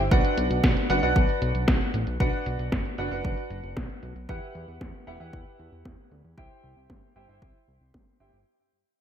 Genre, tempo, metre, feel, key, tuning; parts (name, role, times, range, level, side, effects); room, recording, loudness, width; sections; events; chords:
italo disco; 115 BPM; 4/4; straight; B phrygian; A4 = 440 Hz
fat analog bass; bass; 0.0-8.4 s; E1 to E2; -30 LUFS; equal
warm concert grand piano; stabs; 0.1-8.4 s; D4 to G5; -28 LUFS; right 1 dB; wide subtle chorus, low-pass filter, digital delay
electronic kick drum; drums; 0.1-8.0 s; -25 LUFS; equal
house drum kit; drums; 0.1-8.4 s; hi-hat, snare drum; -30 LUFS; equal; low-pass filter on hats, low-pass filter on snare, low-pass filter on room, gated reverb
light reverb, digital ambience; bright 1980s-style digital production; -23 LUFS; side -9 dB against mid
0.0-8.5 A section
fade-out 0.0-8.5; filter sweep on drum 0.0-8.5
0.1 Bm; 4.3 Emadd9; 6.4 C